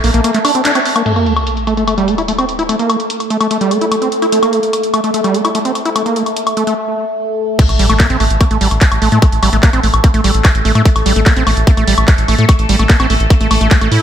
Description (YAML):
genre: psychedelic trance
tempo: 147 BPM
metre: 4/4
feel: straight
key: unclear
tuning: A4 = 439 Hz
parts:
  - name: overtone-sweeping drone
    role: sustained chords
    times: 0.0-14.0 s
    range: A3 to A4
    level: -19 LUFS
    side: right 1 dB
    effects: chorus, built-in reverb, phaser, sidechain pumping
  - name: overdriven acid bass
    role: riff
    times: 0.0-14.0 s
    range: G3 to E4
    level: -16 LUFS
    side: right 1 dB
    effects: distortion, auto-pan, sidechain pumping, analog delay
  - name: round analog bass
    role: bass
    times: 0.0-0.2, 7.7-14.0 s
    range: A1 to A2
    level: -14 LUFS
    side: equal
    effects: none
  - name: techno drum kit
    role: drums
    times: 0.0-14.0 s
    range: crash cymbal, handclaps, hi-hat, woodblock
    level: -18 LUFS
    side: left 1 dB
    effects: low-pass filter on hats, low-pass filter on perc, low-pass filter on snare, low-pass filter on cymbals, low-pass filter on room
  - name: sub drop and impact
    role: sound effects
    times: 1.1-2.7, 7.6-9.2 s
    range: none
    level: -20 LUFS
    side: equal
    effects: none
  - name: electronic kick drum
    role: drums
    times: 7.6-13.8 s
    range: none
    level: -9 LUFS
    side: equal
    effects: none
room: moderate plate reverb, RT60 1.9 s, digital ambience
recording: dreamy mix soaked in reverb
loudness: -10 LUFS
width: side -9 dB against mid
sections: 0.0-1.1 A section; 1.1-7.6 B section; 7.6-14.0 C section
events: band accent 0.7; impact 1.1-2.7, 7.6-9.2; filter sweep on synth drone 1.1-7.6; break 6.8-7.6; drop 7.6-14.0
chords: 0.0 Bb5; 1.1 A5